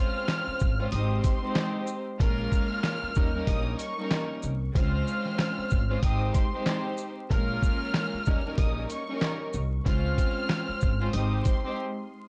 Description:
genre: hip hop, boom-bap hip-hop.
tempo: 94 BPM.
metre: 4/4.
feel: swing 59% on 16ths.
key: Ab major.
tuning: A4 = 440 Hz.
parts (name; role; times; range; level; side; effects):
warm studio violin section; melody; 0.0-11.7 s; C6 to F6; -38 LUFS; equal; high-pass filter, low-pass filter, analog delay.
warm chamber string section; accompaniment; 0.0-11.8 s; G3 to C5; -34 LUFS; equal; high-pass filter, low-pass filter.
lo-fi sampler-style drum kit; drums; 0.3-11.6 s; handclaps, hi-hat, kick drum, shaker, snare drum; -30 LUFS; equal; vintage 12-bit sampler grit.
upright bass; bass; 0.5-11.4 s; Ab1 to Eb2; -32 LUFS; equal; none.
room: little or no reverb.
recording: dry, gritty hardware recording, vinyl crackle, nothing above 10.4 kHz.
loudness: -28 LUFS.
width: mono.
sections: 0.0-12.3 A section.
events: break 11.8-12.3.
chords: 0.0 Dbmaj7; 0.9 Abmaj7; 2.2 Bbm7; 3.2 Eb7; 4.8 Dbmaj7; 6.0 Abmaj7; 7.3 Bbm7; 8.3 Eb7; 9.9 Dbmaj7; 11.1 Abmaj7.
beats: 0.28 0.92 1.56 | 2.20 2.84 3.48 4.11 | 4.75 5.39 6.03 6.67 | 7.31 7.94 8.58 9.22 | 9.86 10.50 11.13 11.77.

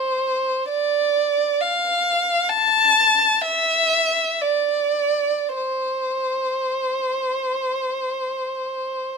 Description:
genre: classical, free, expressive piece for unaccompanied violin.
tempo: free time.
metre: none.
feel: none.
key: C major.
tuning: A4 = 440 Hz.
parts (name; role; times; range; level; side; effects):
dark violin; solo; 0.0-9.2 s; C5 to A5; -18 LUFS; equal; none.
room: light reverb.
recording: close, detailed microphones.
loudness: -18 LUFS.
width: side -5 dB against mid.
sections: 0.0-9.2 A section.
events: none.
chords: none.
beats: free time.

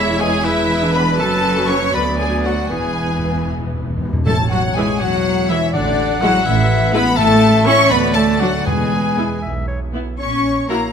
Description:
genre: quick classical-period movement for symphony orchestra.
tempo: 76-84 BPM (dotted quarters).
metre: 6/8.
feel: rubato.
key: A major.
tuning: A4 = 440 Hz.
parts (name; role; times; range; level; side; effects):
rich studio violin section; melody; 0.0-10.9 s; D5 to C#6; -22 LUFS; left 4 dB; none.
clear clarinet; second line; 0.0-10.9 s; B4 to F#5; -24 LUFS; left 2 dB; none.
clear oboe; second line; 0.0-10.8 s; D4 to C#5; -26 LUFS; right 2 dB; none.
flute section; second line; 0.0-10.9 s; D5 to C#6; -26 LUFS; left 2 dB; none.
warm studio violin section; second line; 0.0-10.8 s; E4 to C#6; -24 LUFS; left 2 dB; none.
rich studio viola section; accompaniment; 0.0-10.8 s; E3 to F#4; -23 LUFS; right 1 dB; none.
clear studio cello section; bass; 0.0-10.9 s; D2 to C#4; -22 LUFS; right 3 dB; none.
rich studio double bass section; bass; 0.0-10.8 s; E1 to E2; -22 LUFS; right 4 dB; none.
mellow French horn section; sustained chords; 0.2-10.8 s; D3 to C#4; -21 LUFS; left 5 dB; none.
timpani; percussion; 2.7-9.4 s; E2 to A2; -24 LUFS; equal; none.
room: moderate concert hall reverb, RT60 2.0 s.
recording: close, detailed microphones.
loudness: -14 LUFS.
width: side -7 dB against mid.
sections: 0.0-4.3 A section; 4.3-10.9 B section.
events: timpani fill 2.7-4.3.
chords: 0.0 E; 1.2 F#m; 1.9 Bm/D; 2.7 E; 4.3 A; 5.7 E7/A; 7.2 A; 7.9 D; 8.7 E; 10.2 F#7/A#.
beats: 0.45 | 1.19 1.94 | 2.71 3.49 | 4.26 5.01 | 5.74 6.46 | 7.18 7.91 | 8.66 9.43 | 10.19.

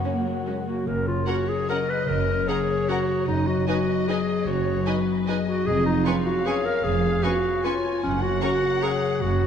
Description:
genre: classical, orchestral ballroom waltz.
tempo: 151 BPM.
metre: 3/4.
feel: uneven beats, rubato.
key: F# major.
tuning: A4 = 439 Hz.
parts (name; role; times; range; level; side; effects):
warm studio violin section; melody; 0.0-9.5 s; F#4 to G#5; -34 LUFS; left 5 dB; none.
mellow hollow concert flute; second line; 0.0-0.7 s; F#5; -35 LUFS; left 5 dB; none.
rich symphonic violin section; second line; 0.0-8.9 s; C#4 to C#6; -35 LUFS; equal; none.
warm studio viola section; accompaniment; 0.0-8.9 s; F#3 to B4; -33 LUFS; right 2 dB; none.
concert harp; arpeggios; 0.0-9.5 s; E#2 to C#5; -28 LUFS; left 8 dB; none.
warm chamber cello section; bass; 0.0-9.5 s; E#2 to F#4; -30 LUFS; right 3 dB; none.
warm clarinet; second line; 0.7-9.5 s; C#4 to B4; -25 LUFS; equal; none.
warm studio double bass section; bass; 0.9-9.5 s; E#1 to F#1; -30 LUFS; right 4 dB; none.
room: wet concert hall reverb, RT60 1.9 s.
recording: none.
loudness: -21 LUFS.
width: side -8 dB against mid.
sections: 0.9-9.5 A section.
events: none.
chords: 0.0 F#; 3.3 G#m7/F#; 5.7 C#7/E#; 8.0 F#.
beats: 0.05 0.47 | 0.87 1.27 1.69 | 2.08 2.48 2.88 | 3.27 3.67 4.08 | 4.47 4.87 5.28 | 5.67 6.06 6.46 | 6.85 7.24 7.65 | 8.04 8.42 8.83 | 9.21.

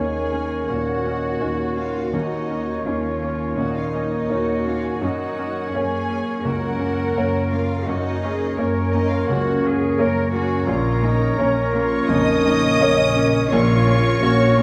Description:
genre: cinematic, emotional film score for orchestra.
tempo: 84 BPM.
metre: 4/4.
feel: rubato.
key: Eb minor.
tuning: A4 = 440 Hz.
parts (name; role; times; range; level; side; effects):
muted studio violin section; melody; 0.0-14.6 s; Db5 to Eb6; -33 LUFS; equal; none.
muted studio violin section; second line; 0.0-14.6 s; Db4 to Eb5; -32 LUFS; equal; none.
warm clarinet; second line; 0.0-14.6 s; Bb4; -30 LUFS; equal; none.
warm oboe; second line; 0.0-14.6 s; Db5; -32 LUFS; equal; none.
muted studio viola section; accompaniment; 0.0-14.6 s; Bb3 to Db4; -34 LUFS; equal; none.
warm baby grand piano; accompaniment; 0.0-14.6 s; Bb1 to Db5; -27 LUFS; equal; none.
mellow French horn section; sustained chords; 0.0-14.6 s; Bb3 to Db4; -30 LUFS; equal; none.
concert harp; arpeggios; 0.0-14.6 s; Gb2 to Db5; -32 LUFS; equal; none.
muted studio double bass section; bass; 0.0-14.6 s; Bb1 to Gb2; -28 LUFS; equal; none.
muted studio cello section; bass; 0.7-14.6 s; Db4 to Bb4; -30 LUFS; equal; none.
room: wet recital hall reverb, RT60 1.6 s.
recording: none.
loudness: -21 LUFS.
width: mono.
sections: 0.0-14.6 A section.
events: none.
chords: 0.0 Ebm7; 5.0 Gb; 10.7 Bbm.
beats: 0.69 1.41 | 2.14 2.86 3.58 4.30 | 5.03 5.74 6.45 7.16 | 7.87 8.58 9.29 9.99 | 10.68 11.38 12.09 12.80 | 13.51 14.21.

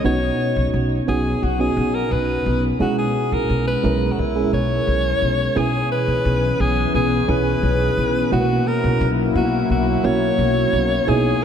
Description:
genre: pop.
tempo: 87 BPM.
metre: 4/4.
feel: straight.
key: unclear.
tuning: A4 = 440 Hz.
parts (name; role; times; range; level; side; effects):
bright alto saxophone; melody; 0.0-11.4 s; E4 to C#5; -22 LUFS; left 1 dB; ping-pong delay.
FM electric piano with tremolo; accompaniment; 0.0-11.4 s; B2 to A#4; -21 LUFS; right 2 dB; none.
upright bass; bass; 0.0-11.3 s; B1; -22 LUFS; left 1 dB; none.
lush unison pad; sustained chords; 6.2-11.4 s; E3 to D#5; -24 LUFS; left 2 dB; chorus.
room: wet cathedral reverb, RT60 5.5 s.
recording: dreamy mix soaked in reverb.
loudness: -17 LUFS.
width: side -8 dB against mid.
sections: 0.0-5.6 A section; 5.6-11.4 B section.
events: none.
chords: 0.0 Badd9; 2.8 C#m/B; 5.6 C#m7/B; 8.3 F#7/B.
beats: | 0.04 0.73 1.42 2.11 | 2.80 3.49 4.18 4.87 | 5.56 6.25 6.94 7.63 | 8.32 9.01 9.70 10.39 | 11.08.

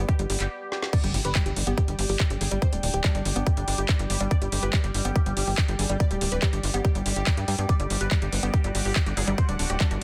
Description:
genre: psychedelic trance.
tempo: 142 BPM.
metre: 4/4.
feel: straight.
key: G major.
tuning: A4 = 440 Hz.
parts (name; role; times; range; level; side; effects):
unison lead; melody; 0.0-10.0 s; D4 to D5; -36 LUFS; equal; phaser, cassette tape, sidechain pumping, tape echo.
overtone-sweeping drone; sustained chords; 0.0-10.0 s; G3 to G4; -40 LUFS; equal; chorus, built-in reverb, sidechain pumping.
woody wave-folded pluck; riff; 0.0-9.9 s; G3 to G4; -37 LUFS; equal; chorus, sidechain pumping, delay.
tight sequencer bass; bass; 0.0-10.0 s; D1 to G2; -30 LUFS; equal; none.
airy breathy pad; texture; 0.0-10.0 s; G3 to G5; -40 LUFS; equal; chorus, sidechain pumping.
drum and bass drum kit; drums; 0.1-10.0 s; crash cymbal, handclaps, hi-hat, snare drum; -32 LUFS; equal; none.
electronic kick drum; drums; 0.1-9.9 s; none; -25 LUFS; equal; none.
impact; sound effects; 1.1-2.6 s; none; -39 LUFS; equal; none.
formant-sweep wobble bass; second line; 8.3-10.0 s; B3 to D4; -45 LUFS; equal; none.
room: light reverb, digital ambience.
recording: dense, heavily limited modern master.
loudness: -25 LUFS.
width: mono.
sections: 0.9-10.0 A section.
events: break 0.5-0.9; drum fill 0.7; drop 0.9-10.0; impact 0.9-2.6.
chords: 0.0 G5.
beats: 0.09 0.51 | 0.93 1.35 1.78 2.20 | 2.62 3.04 3.47 3.89 | 4.31 4.73 5.16 5.58 | 6.00 6.42 6.85 7.27 | 7.69 8.11 8.54 8.96 | 9.38 9.80.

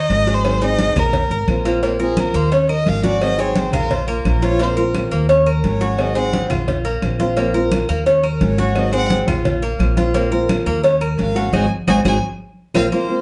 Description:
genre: latin, Cuban son and guajira.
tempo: 173 BPM.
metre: 4/4.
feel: straight.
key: Bb minor.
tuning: A4 = 436 Hz.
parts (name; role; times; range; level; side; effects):
warm violin; melody; 0.0-6.3, 8.4-9.1, 11.2-13.2 s; F4 to Ab5; -25 LUFS; equal; none.
Cuban tres; arpeggios; 0.0-13.2 s; Bb3 to Bb4; -23 LUFS; equal; none.
upright bass; bass; 0.0-12.9 s; Ab1 to Eb2; -23 LUFS; equal; none.
flamenco guitar; accompaniment; 0.1-13.2 s; Eb3 to Ab4; -24 LUFS; equal; none.
congas; percussion; 0.1-13.2 s; none; -26 LUFS; equal; none.
cowbell; percussion; 0.1-12.8 s; none; -30 LUFS; equal; none.
claves; percussion; 0.4-12.8 s; none; -36 LUFS; equal; none.
room: wet studio reverb, RT60 0.6 s.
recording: heard from further back in the room, nothing above 10.8 kHz.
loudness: -18 LUFS.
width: mono.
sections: 0.0-1.8 A section; 1.8-12.9 B section.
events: violin solo 1.8-12.9; band accent 11.5-12.9; drum fill 12.2-12.9.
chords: 0.4 Ab7; 1.1 Bbsus2; 2.5 Ebm7; 3.2 Ab7; 3.9 Bbsus2; 5.3 Ebm7; 6.0 Ab7; 6.7 Bbsus2; 8.1 Ebm7; 8.8 Ab7; 9.5 Bbsus2; 10.8 Ebm7; 11.5 Ab7; 12.2 Bbsus2.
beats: 0.10 | 0.45 0.79 1.14 1.48 | 1.83 2.17 2.52 2.87 | 3.21 3.56 3.90 4.25 | 4.60 4.95 5.29 5.64 | 5.98 6.33 6.68 7.03 | 7.37 7.72 8.06 8.41 | 8.76 9.11 9.45 9.80 | 10.15 10.49 10.84 11.19 | 11.54 11.88 12.23 12.58 | 12.92.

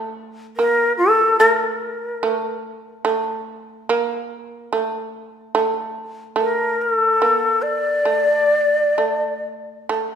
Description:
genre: japanese traditional, Japanese chamber music.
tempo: 72 BPM.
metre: 4/4.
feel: rubato.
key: unclear.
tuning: A4 = 444 Hz.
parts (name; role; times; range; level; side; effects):
shamisen; second line; 0.0-10.2 s; A3 to Bb3; -23 LUFS; right 4 dB; none.
breathy bright shakuhachi; melody; 0.6-9.4 s; A4 to D5; -16 LUFS; left 1 dB; none.
room: wet recital hall reverb, RT60 1.6 s.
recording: recorded in a church or concert hall.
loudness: -17 LUFS.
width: side -8 dB against mid.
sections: 0.0-9.9 A section.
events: none.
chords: none.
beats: 0.58 1.42 2.23 | 3.06 3.89 4.71 5.54 | 6.38 7.21 8.06 8.97 | 9.90.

